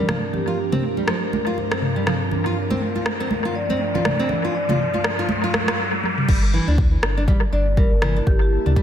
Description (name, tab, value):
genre	afro house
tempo	121 BPM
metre	4/4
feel	swing 57% on 16ths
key	unclear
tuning	A4 = 440 Hz
part	marimba with medium hard mallets	melody	0.0-0.5, 3.6-8.5 s	G4 to D5	-27 LUFS	equal	analog delay
part	ethereal airy pad	sustained chords	0.0-8.8 s	G2 to A5	-28 LUFS	equal	ensemble chorus, built-in reverb, phaser, sidechain pumping
part	nylon-string guitar	arpeggios	0.0-8.8 s	E3 to F4	-27 LUFS	equal	sidechain pumping, analog delay
part	riser	sound effects	1.9-6.3 s	none	-29 LUFS	equal	none
part	afro-pop drum kit	drums	0.1-8.7 s	crash cymbal, rim click, toms	-25 LUFS	left 1 dB	analog delay
part	congas	percussion	0.1-5.7 s	none	-27 LUFS	right 2 dB	analog delay
part	warm sub bass	bass	6.3-8.8 s	G1 to D2	-21 LUFS	equal	sidechain pumping
part	electronic kick drum	drums	6.3-8.8 s	none	-18 LUFS	equal	none
room	moderate echo chamber reverb, RT60 2.0 s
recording	echo-heavy mix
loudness	-18 LUFS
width	side -10 dB against mid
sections	0.0-6.3 A section; 6.3-8.8 B section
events	build-up 0.0-6.3; riser 1.9-6.3; drum fill 6.0; drop 6.3-8.8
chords	0.0 Bbadd9/G; 6.3 Gm69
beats	| 0.34 0.83 1.33 1.82 | 2.32 2.81 3.31 3.81 | 4.30 4.80 5.29 5.79 | 6.29 6.78 7.28 7.77 | 8.27 8.76